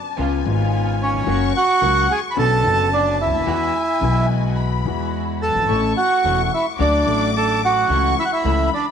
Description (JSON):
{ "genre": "tango", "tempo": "109 BPM", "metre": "4/4", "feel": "rubato", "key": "A major", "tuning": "A4 = 440 Hz", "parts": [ { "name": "warm studio violin section", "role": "second line", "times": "0.0-8.9 s", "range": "G#5 to D6", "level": "-27 LUFS", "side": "left 11 dB", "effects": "none" }, { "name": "warm concert grand piano", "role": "accompaniment", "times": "0.2-8.7 s", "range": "E1 to A4", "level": "-25 LUFS", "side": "left 11 dB", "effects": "none" }, { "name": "dark studio string section", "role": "stabs", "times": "0.2-8.7 s", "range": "G#3 to F#4", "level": "-30 LUFS", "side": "right 10 dB", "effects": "none" }, { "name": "upright bass", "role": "bass", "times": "0.2-8.7 s", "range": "E1 to E2", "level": "-22 LUFS", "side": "right 1 dB", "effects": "none" }, { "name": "bandoneon", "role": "melody", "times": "1.0-8.9 s", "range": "C#4 to B5", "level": "-18 LUFS", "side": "right 3 dB", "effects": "none" } ], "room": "moderate echo chamber reverb, RT60 1.8 s", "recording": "1960s-style stereo with parts hard left and right", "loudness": "-16 LUFS", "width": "side -7 dB against mid", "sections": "0.0-8.9 A section", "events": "none", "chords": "0.2 C#7; 1.3 F#; 2.4 Bmadd9; 3.5 Eadd9; 5.7 A; 6.8 D; 7.9 A/C#" }